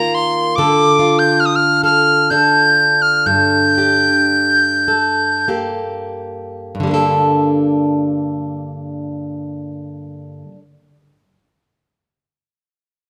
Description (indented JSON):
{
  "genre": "celtic folk, Celtic slow air",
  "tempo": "44-73 BPM",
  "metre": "3/4",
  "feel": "rubato",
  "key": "G minor",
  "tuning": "A4 = 440 Hz",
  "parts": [
    { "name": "bright reedy tin whistle", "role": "melody", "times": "0.0-5.5 s", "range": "Bb5 to G6", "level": "-15 LUFS", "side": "equal", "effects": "none" },
    { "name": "picked plugged-in steel-string acoustic guitar", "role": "accompaniment", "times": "0.0-10.6 s", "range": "G2 to Bb4", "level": "-19 LUFS", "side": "equal", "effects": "none" }
  ],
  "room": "moderate recital hall reverb, RT60 1.5 s",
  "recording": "none",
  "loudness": "-14 LUFS",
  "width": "mono",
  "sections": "0.0-6.8 A section; 6.8-10.7 B section",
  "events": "slowing down 0.6-6.8",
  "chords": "0.0 Ebsus2; 0.6 Dm; 3.3 Gmadd9",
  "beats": "| 0.56 1.40 2.29 | 3.25 4.30 5.48 | 6.80 8.09 9.35"
}